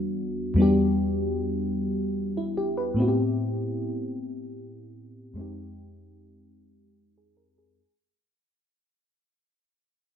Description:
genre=R&B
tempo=50 BPM (dotted quarters)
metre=6/8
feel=straight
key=unclear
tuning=A4 = 440 Hz
part: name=mellow FM electric piano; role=solo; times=0.0-8.0 s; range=E2 to B4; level=-24 LUFS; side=left 1 dB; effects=chorus
room=moderate stone room reverb, RT60 1.0 s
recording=band playing live in one room, low-pass filter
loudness=-24 LUFS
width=side -8 dB against mid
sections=0.0-7.8 A section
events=fade-out 0.0-7.8; filter sweep 0.0-7.8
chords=0.0 Em9; 3.0 Am9; 5.4 Fm9

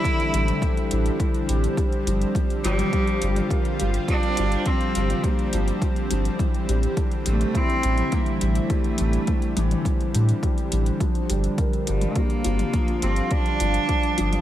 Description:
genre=piano and strings electronica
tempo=104 BPM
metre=4/4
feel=straight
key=G dorian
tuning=A4 = 441 Hz
part: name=rich cello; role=melody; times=0.0-14.4 s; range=G3 to E4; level=-27 LUFS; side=right 1 dB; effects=diffuse ambient delay
part: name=lush unison pad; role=sustained chords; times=0.0-14.4 s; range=D3 to F4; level=-28 LUFS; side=right 1 dB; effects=chorus, sidechain pumping
part: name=dark upright piano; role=riff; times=0.0-14.4 s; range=E3 to Bb4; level=-29 LUFS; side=left 3 dB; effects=lush chorus, diffuse ambient delay
part: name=electronic kick drum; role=drums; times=0.0-14.0 s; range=none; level=-24 LUFS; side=equal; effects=overdrive
part: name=deep house drum kit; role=drums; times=0.1-14.4 s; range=hi-hat, toms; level=-33 LUFS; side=equal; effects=overdrive
part: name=warm sub bass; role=bass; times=0.3-14.4 s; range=G1 to A2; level=-23 LUFS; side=equal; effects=sidechain pumping
room=light reverb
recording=none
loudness=-20 LUFS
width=side -12 dB against mid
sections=0.0-14.4 A section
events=none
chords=0.0 Am7; 1.8 Gm7; 6.4 Am7; 11.0 Gm7

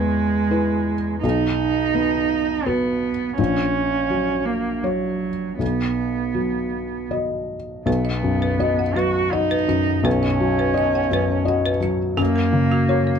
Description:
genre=neoclassical piano and strings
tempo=83 BPM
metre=3/4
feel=rubato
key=B major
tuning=A4 = 439 Hz
part: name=muted cello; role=second line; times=0.0-13.2 s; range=F#3 to F#4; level=-22 LUFS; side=right 6 dB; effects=none
part: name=felt-muted upright piano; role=accompaniment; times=0.0-13.2 s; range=A#1 to D#5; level=-21 LUFS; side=left 3 dB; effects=none
part: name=folk marimba with hard mallets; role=arpeggios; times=7.9-13.2 s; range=F#4 to F#5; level=-28 LUFS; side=equal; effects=tape echo
room=light reverb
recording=dark, warm production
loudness=-19 LUFS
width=side -7 dB against mid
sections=0.0-7.9 A section; 7.9-13.2 B section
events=none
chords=0.0 E; 1.2 B; 3.4 F#/A#; 5.6 B; 12.2 F#

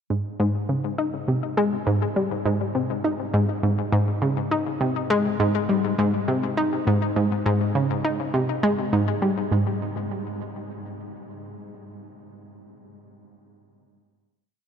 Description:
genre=ambient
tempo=102 BPM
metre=4/4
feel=straight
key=Ab major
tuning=A4 = 440 Hz
part: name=analog pluck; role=solo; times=0.1-9.8 s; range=Ab2 to Eb4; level=-22 LUFS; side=equal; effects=chorus, ping-pong delay
room=wet huge ambient reverb, RT60 8.3 s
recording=none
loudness=-21 LUFS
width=side -7 dB against mid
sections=0.1-9.5 A section; 9.5-11.9 final note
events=none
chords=none

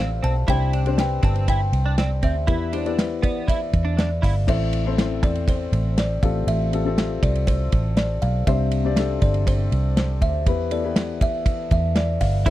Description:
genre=piano-driven pop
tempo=120 BPM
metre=4/4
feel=straight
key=unclear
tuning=A4 = 440 Hz
part: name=kalimba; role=melody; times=0.0-12.5 s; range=B4 to A5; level=-28 LUFS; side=right 1 dB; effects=none
part: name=dark upright piano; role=accompaniment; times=0.0-12.5 s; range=A2 to D5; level=-28 LUFS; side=left 8 dB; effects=none
part: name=direct-recorded clean electric guitar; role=riff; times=0.0-4.3, 12.5 s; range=B3 to E4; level=-29 LUFS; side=right 4 dB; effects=analog chorus
part: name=vintage muted fingered electric bass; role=bass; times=0.0-12.5 s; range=G1 to E2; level=-22 LUFS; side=equal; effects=none
part: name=modern studio drum kit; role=drums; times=0.2-12.5 s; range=crash cymbal, hi-hat, kick drum, ride cymbal, snare drum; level=-22 LUFS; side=equal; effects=none
room=little or no reverb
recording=dry, close 1970s-style studio recording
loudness=-19 LUFS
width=side -14 dB against mid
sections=0.0-4.5 A section; 4.5-12.5 A section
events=none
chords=0.5 Csus2; 2.5 Em; 4.5 Am; 6.2 Fadd9/A; 8.5 Csus2; 10.5 Em

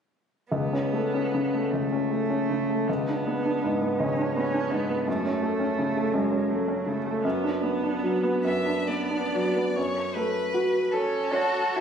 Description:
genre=classical, slow romantic movement for piano trio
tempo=42-57 BPM (dotted quarters)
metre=6/8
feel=rubato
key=F# minor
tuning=A4 = 440 Hz
part: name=rich cello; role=second line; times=0.5-11.8 s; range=F#3 to F#4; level=-31 LUFS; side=right 4 dB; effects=none
part: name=warm concert grand piano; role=accompaniment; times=0.5-11.8 s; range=C#2 to C#5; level=-25 LUFS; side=equal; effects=none
part: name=clear violin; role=melody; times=8.4-11.8 s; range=A4 to E5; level=-29 LUFS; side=left 2 dB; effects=none
room=moderate recital hall reverb, RT60 1.6 s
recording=recorded on a phone in the room, studio reverb, compression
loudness=-24 LUFS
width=side -7 dB against mid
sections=0.5-9.8 A section; 9.8-11.8 B section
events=none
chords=0.5 Aadd9/C#; 2.9 C#5; 5.1 F#m; 7.2 Bm/F#; 9.8 F#m

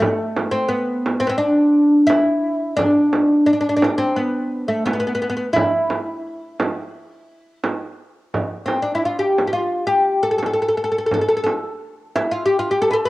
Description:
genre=Arabic maqam ensemble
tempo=86 BPM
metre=4/4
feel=straight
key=E maqam kurd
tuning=A4 = 440 Hz
part: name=oud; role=melody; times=0.0-13.1 s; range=A3 to B4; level=-17 LUFS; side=equal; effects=cassette tape
part: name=frame drum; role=percussion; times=0.0-12.3 s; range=none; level=-24 LUFS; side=right 2 dB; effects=none
room=moderate spring reverb, RT60 1.5 s, small room ambience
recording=home recording on cassette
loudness=-17 LUFS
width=side -18 dB against mid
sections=0.0-8.3 A section; 8.3-13.1 B section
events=none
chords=none

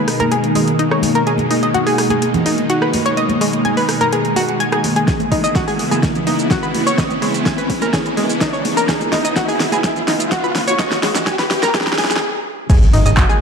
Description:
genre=progressive house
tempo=126 BPM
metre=4/4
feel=straight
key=G# minor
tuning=A4 = 440 Hz
part: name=supersaw pad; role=sustained chords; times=0.0-13.4 s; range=B2 to E4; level=-20 LUFS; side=equal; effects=phaser, sidechain pumping
part: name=riser and impact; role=sound effects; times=3.5-13.4 s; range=none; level=-23 LUFS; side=equal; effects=none
part: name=deep house drum kit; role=drums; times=0.1-13.4 s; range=crash cymbal, handclaps, hi-hat, rim click, shaker, snare drum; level=-22 LUFS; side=equal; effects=overdrive
part: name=analog pluck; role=arpeggios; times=0.2-13.4 s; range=G#3 to D#6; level=-19 LUFS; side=equal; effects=chorus, sidechain pumping, tape echo
part: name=congas and woodblock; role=percussion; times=0.2-12.1 s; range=none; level=-25 LUFS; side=right 2 dB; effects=sidechain pumping on perc
part: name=electronic kick drum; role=drums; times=5.1-13.3 s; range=none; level=-18 LUFS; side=equal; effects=overdrive
part: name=plucky analog bass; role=bass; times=12.7-13.2 s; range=G#1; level=-16 LUFS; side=equal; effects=tube saturation, sidechain pumping
room=moderate lush hall reverb, RT60 2.0 s, digital ambience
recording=dark, warm production, high-pass filter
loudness=-14 LUFS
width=side -6 dB against mid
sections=0.0-12.7 A section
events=build-up 0.0-12.7; filter sweep 0.0-12.7; riser 3.5-12.2; drum fill 5.1-12.2; stop 12.2-12.7; impact 12.7-13.4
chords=0.0 G#madd9; 5.1 C#m7; 12.7 G#madd9

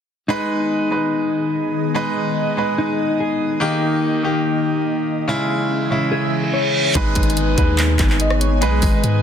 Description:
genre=hip hop, trap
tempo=144 BPM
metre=4/4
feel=half-time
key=G# harmonic minor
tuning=A4 = 441 Hz
part: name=clear concert grand piano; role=accompaniment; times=0.3-9.2 s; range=C#3 to B4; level=-21 LUFS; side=right 1 dB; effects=none
part: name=airy breathy pad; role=sustained chords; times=0.3-9.2 s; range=D#3 to E5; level=-25 LUFS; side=left 1 dB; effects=chorus, phaser
part: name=mellow electric guitar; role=arpeggios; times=0.3-9.2 s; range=D#4 to C#5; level=-22 LUFS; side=left 2 dB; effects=ping-pong delay
part: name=reverse cymbal and downlifter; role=sound effects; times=6.3-9.2 s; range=none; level=-26 LUFS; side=right 3 dB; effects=none
part: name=long sustained 808-style bass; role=bass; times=7.0-9.2 s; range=G#1 to G#2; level=-18 LUFS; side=equal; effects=none
part: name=trap drum kit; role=drums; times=7.0-9.1 s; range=handclaps, hi-hat, kick drum, rim click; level=-19 LUFS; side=equal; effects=none
part: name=warm velvety synth lead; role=second line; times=7.2-9.2 s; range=B4 to D#5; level=-26 LUFS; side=left 2 dB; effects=chorus, ping-pong delay
room=digital ambience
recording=dense, heavily limited modern master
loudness=-16 LUFS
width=side -8 dB against mid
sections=0.3-7.0 A section; 7.0-9.2 B section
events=reverse cymbal 6.3-7.0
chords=0.3 G#m; 3.6 D#; 5.3 C#m; 7.0 G#m

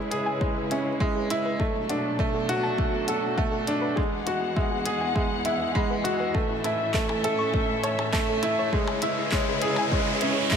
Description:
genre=piano and strings electronica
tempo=101 BPM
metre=4/4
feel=straight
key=unclear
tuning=A4 = 440 Hz
part: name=muted studio string section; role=sustained chords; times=0.0-10.6 s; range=E2 to F#5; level=-30 LUFS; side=left 2 dB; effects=none
part: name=bright upright piano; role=riff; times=0.0-10.6 s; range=G#3 to C#5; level=-26 LUFS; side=right 2 dB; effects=ping-pong delay
part: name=minimal click drum kit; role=drums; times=0.1-10.6 s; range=handclaps, hi-hat, percussion blips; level=-33 LUFS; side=left 1 dB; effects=small room reverb
part: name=soft round pluck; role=arpeggios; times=0.3-10.6 s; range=G#4 to C#6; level=-34 LUFS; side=left 3 dB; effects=chorus, sidechain pumping, ping-pong delay
part: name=electronic kick drum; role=drums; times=0.4-10.6 s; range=none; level=-28 LUFS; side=left 1 dB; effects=overdrive, small room reverb
part: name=riser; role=sound effects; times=7.8-10.6 s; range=none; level=-32 LUFS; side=equal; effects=none
room=moderate huge ambient reverb, RT60 4.5 s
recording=none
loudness=-23 LUFS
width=side -7 dB against mid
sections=0.0-10.6 A section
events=build-up 0.0-10.6; filter sweep on synth arpeggio sound 0.0-10.6; riser 7.8-10.6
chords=0.0 C#m7; 1.6 Bm7; 4.0 Eadd9; 6.4 A; 8.7 C#m7

